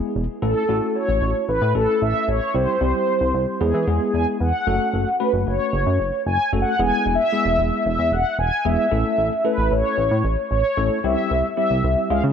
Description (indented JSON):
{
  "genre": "synth-pop",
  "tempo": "113 BPM",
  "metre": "4/4",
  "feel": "straight",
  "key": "A major",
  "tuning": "A4 = 439 Hz",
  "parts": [
    { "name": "mellow synth brass", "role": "melody", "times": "0.0-12.2 s", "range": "G#4 to G#5", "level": "-21 LUFS", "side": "equal", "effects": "chorus, analog delay" },
    { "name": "tine electric piano", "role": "accompaniment", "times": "0.0-12.3 s", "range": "G3 to B4", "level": "-25 LUFS", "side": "left 1 dB", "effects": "overdrive, medium stereo tremolo, analog delay" },
    { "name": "chorused synth bass", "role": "bass", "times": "0.2-12.3 s", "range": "E1 to E3", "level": "-22 LUFS", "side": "equal", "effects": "none" }
  ],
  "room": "moderate spring reverb, RT60 2.5 s",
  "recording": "echo-heavy mix",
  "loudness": "-18 LUFS",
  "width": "side -7 dB against mid",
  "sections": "0.0-4.7 A section; 4.7-12.3 B section",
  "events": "none",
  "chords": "0.4 A; 2.5 C; 3.6 E; 4.7 F#m; 6.8 E; 8.9 A; 11.0 C"
}